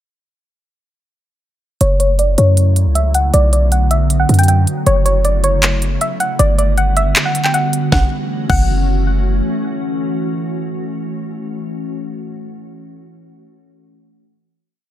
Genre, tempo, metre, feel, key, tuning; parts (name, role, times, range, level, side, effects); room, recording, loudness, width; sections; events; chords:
hip hop, trap; 157 BPM; 4/4; half-time; F# phrygian; A4 = 440 Hz
soft round pluck; melody; 1.8-9.0 s; C#5 to G5; -18 LUFS; equal; chorus, low-pass filter, digital delay
glassy FM pad; sustained chords; 2.0-11.7 s; C#3 to F#4; -21 LUFS; equal; ensemble chorus, built-in reverb, low-pass filter
warm 808-style bass; bass; 1.8-9.4 s; F#1 to F#2; -13 LUFS; equal
trap drum kit; drums; 1.8-8.6 s; crash cymbal, handclaps, hi-hat, kick drum, snare drum; -18 LUFS; equal
little or no reverb; -13 LUFS; side -12 dB against mid
1.8-7.9 breakdown; 7.9-11.0 final chord
filter sweep 1.8-7.9; kick muted 7.2-7.9
1.8 F#m7; 3.3 Bm; 4.9 F#m7; 6.4 Gmaj7; 7.9 F#m7